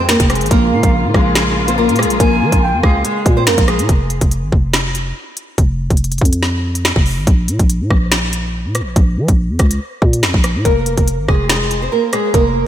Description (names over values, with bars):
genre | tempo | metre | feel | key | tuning
hip hop, drill | 142 BPM | 4/4 | half-time | unclear | A4 = 440 Hz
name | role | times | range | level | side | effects
nylon-string guitar | melody | 0.0-3.9, 10.7-12.7 s | Ab3 to C5 | -17 LUFS | equal | wide subtle chorus
muted studio string section | sustained chords | 0.0-3.9 s | Db3 to G5 | -21 LUFS | left 1 dB | none
growling 808-style bass | bass | 0.0-12.7 s | F1 to F3 | -17 LUFS | equal | none
drill drum kit | drums | 0.1-12.4 s | finger snaps, hi-hat, kick drum, rim click, snare drum | -15 LUFS | equal | none
bright concert flute | second line | 0.7-3.0 s | F5 to Ab5 | -23 LUFS | right 2 dB | analog delay
room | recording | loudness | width
light reverb, small room ambience | none | -12 LUFS | side -11 dB against mid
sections
0.0-3.9 A section; 3.9-12.7 B section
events
break 3.9-10.7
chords
0.0 Fmadd9; 0.5 Bbm7; 3.9 N.C.; 10.7 Fm